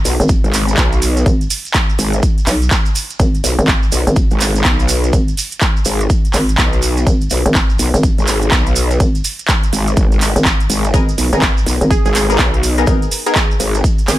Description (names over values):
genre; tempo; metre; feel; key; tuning
bass house; 124 BPM; 4/4; swing 62% on 16ths; G# minor; A4 = 440 Hz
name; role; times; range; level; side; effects
hollow knocking FM bass; bass; 0.0-14.2 s; G#1 to B1; -16 LUFS; equal; tube saturation, sidechain pumping
growl bass; bass; 0.1-13.8 s; G#1 to B1; -15 LUFS; equal; chorus, overdrive, sidechain pumping
big-room dance drum kit; drums; 0.1-14.2 s; handclaps, hi-hat; -19 LUFS; right 1 dB; studio reverb
maracas; percussion; 0.1-14.2 s; none; -24 LUFS; right 4 dB; none
electronic kick drum; drums; 0.3-14.0 s; none; -15 LUFS; equal; studio reverb
band-passed chord stab; stabs; 10.9-13.3 s; B3 to A#4; -21 LUFS; left 4 dB; phaser, wide subtle chorus, sidechain pumping, ping-pong delay
glassy wavetable pluck; melody; 11.9-14.2 s; G#4; -22 LUFS; right 4 dB; chorus, ping-pong delay
room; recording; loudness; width
digital ambience; none; -12 LUFS; side -15 dB against mid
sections
0.0-14.2 A section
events
none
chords
0.0 G#m